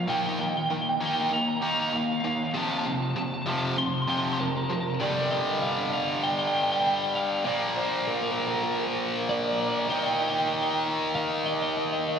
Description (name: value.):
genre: rock.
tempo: 98 BPM.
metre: 4/4.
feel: straight.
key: G minor.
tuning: A4 = 444 Hz.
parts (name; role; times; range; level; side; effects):
twelve-string electric guitar; melody; 0.0-12.2 s; Bb4 to C6; -28 LUFS; right 1 dB; none.
tight distorted guitar; riff; 0.0-12.2 s; F2 to Eb4; -26 LUFS; equal; distortion.
room: wet cathedral reverb, RT60 4.0 s.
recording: recorded in a church or concert hall.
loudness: -24 LUFS.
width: side -7 dB against mid.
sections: 0.0-5.0 A section; 5.0-12.2 B section.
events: build-up 0.0-5.0.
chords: 0.1 Ebadd9; 2.5 F; 5.0 G5; 7.5 Bb; 9.9 Eb.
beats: | 0.09 0.71 1.32 1.94 | 2.55 3.16 3.78 4.39 | 5.00 5.62 6.23 6.84 | 7.46 8.07 8.68 9.29 | 9.91 10.52 11.13 11.74.